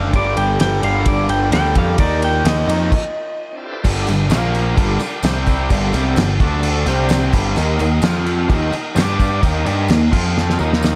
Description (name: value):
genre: classic rock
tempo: 129 BPM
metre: 4/4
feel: straight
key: G minor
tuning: A4 = 440 Hz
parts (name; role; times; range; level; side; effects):
- clean lap steel guitar; melody; 0.0-3.6 s; D5 to G5; -23 LUFS; equal; slapback echo
- bright tonewheel organ; sustained chords; 0.0-11.0 s; C4 to A5; -32 LUFS; equal; none
- overdriven electric guitar; riff; 0.0-11.0 s; G2 to G4; -22 LUFS; equal; slapback echo
- fuzz picked electric bass; bass; 0.0-11.0 s; F#1 to G2; -22 LUFS; equal; overdrive
- cloth-damped thuddy drum kit; drums; 0.1-10.9 s; crash cymbal, kick drum, ride cymbal, snare drum; -22 LUFS; equal; none
- tambourine; percussion; 3.8-10.9 s; none; -40 LUFS; equal; none
room: moderate lush hall reverb, RT60 1.8 s, small room ambience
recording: big arena sound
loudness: -17 LUFS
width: mono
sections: 0.0-3.9 A section; 3.9-11.0 B section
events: electric slide guitar solo 0.0-3.9; stop 2.9-3.9; drum fill 10.4-11.0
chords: 0.1 Gm; 2.0 Eb; 3.9 Gm; 4.3 Bb5; 4.8 Gm; 5.2 C5; 5.7 Gm; 6.4 D5; 6.9 C5; 7.3 G5; 7.6 Eb5; 8.0 F5; 8.5 Eb5; 9.0 G5; 9.4 Eb5; 10.1 F5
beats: | 0.13 0.60 1.06 1.53 | 1.99 2.46 2.92 3.39 | 3.85 4.32 4.78 5.25 | 5.71 6.17 6.64 7.10 | 7.57 8.03 8.50 8.96 | 9.43 9.89 10.36 10.83